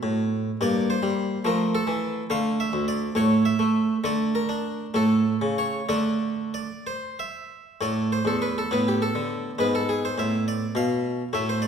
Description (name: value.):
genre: classical, baroque-style suite movement for harpsichord.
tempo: 61-72 BPM (dotted quarters).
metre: 6/8.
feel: rubato.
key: D minor.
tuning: A4 = 440 Hz.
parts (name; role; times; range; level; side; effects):
harpsichord; solo; 0.0-11.7 s; D2 to F5; -22 LUFS; right 1 dB; none.
room: wet recital hall reverb, RT60 1.6 s.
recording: none.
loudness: -22 LUFS.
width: side -7 dB against mid.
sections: 0.0-7.8 A section; 7.8-11.7 A section.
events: none.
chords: 0.0 N.C.; 0.6 Gmadd11; 1.5 Fmaj7; 2.3 D5; 3.2 N.C.; 4.0 D5; 4.9 A; 5.9 D5; 7.8 A5; 8.7 A9sus4; 9.6 G#dim7.